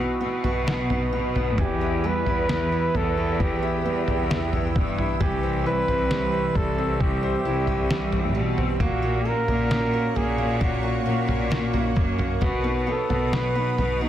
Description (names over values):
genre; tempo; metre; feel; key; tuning
pop ballad; 66 BPM; 4/4; straight; E minor; A4 = 440 Hz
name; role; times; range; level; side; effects
mellow flugelhorn; melody; 0.0-14.1 s; D#4 to B4; -28 LUFS; equal; none
bright grand piano; accompaniment; 0.0-14.1 s; E3 to C5; -30 LUFS; left 1 dB; none
ethereal airy pad; sustained chords; 0.0-14.1 s; G4 to E6; -33 LUFS; right 2 dB; ensemble chorus, built-in reverb, phaser
picked steel-string acoustic guitar; arpeggios; 0.0-14.1 s; E2 to A#4; -31 LUFS; right 6 dB; tape echo
bright symphonic cello section; bass; 0.0-14.1 s; C2 to B2; -27 LUFS; left 1 dB; none
lo-fi sampler-style drum kit; drums; 0.4-14.0 s; kick drum, snare drum, toms; -27 LUFS; equal; none
room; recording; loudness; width
small room ambience; dense, heavily limited modern master; -21 LUFS; side -11 dB against mid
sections
0.0-14.1 A section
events
none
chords
0.0 B; 1.6 Em; 5.2 C; 8.8 F#/A#; 12.4 B